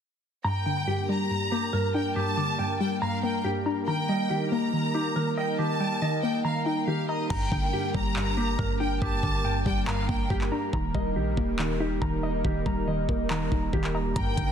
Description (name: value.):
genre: hip hop, trap.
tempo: 140 BPM.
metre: 4/4.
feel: half-time.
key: G minor.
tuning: A4 = 440 Hz.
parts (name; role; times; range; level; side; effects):
rich studio violin section; second line; 0.4-10.3, 14.2-14.5 s; Eb5 to Bb5; -32 LUFS; equal; ping-pong delay.
soft round pluck; accompaniment; 0.4-14.5 s; G2 to Eb5; -29 LUFS; left 1 dB; chorus, low-pass filter.
airy breathy pad; sustained chords; 0.6-14.5 s; G3 to Bb4; -33 LUFS; right 2 dB; chorus.
mellow electric guitar; arpeggios; 0.4-14.5 s; G4 to D6; -32 LUFS; right 1 dB; low-pass filter, ping-pong delay.
clean 808-style bass; bass; 7.3-14.5 s; Eb1 to Bb1; -31 LUFS; equal; none.
trap drum kit; drums; 7.3-14.5 s; crash cymbal, handclaps, hi-hat, kick drum; -31 LUFS; equal; vintage 12-bit sampler grit.
room: light reverb.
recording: dense, heavily limited modern master.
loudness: -25 LUFS.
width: side -8 dB against mid.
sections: 0.4-7.3 A section; 7.3-14.5 B section.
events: hi-hats muted 7.3-14.2.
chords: 0.4 Gm; 3.9 Eb; 7.3 Gm; 10.7 Eb.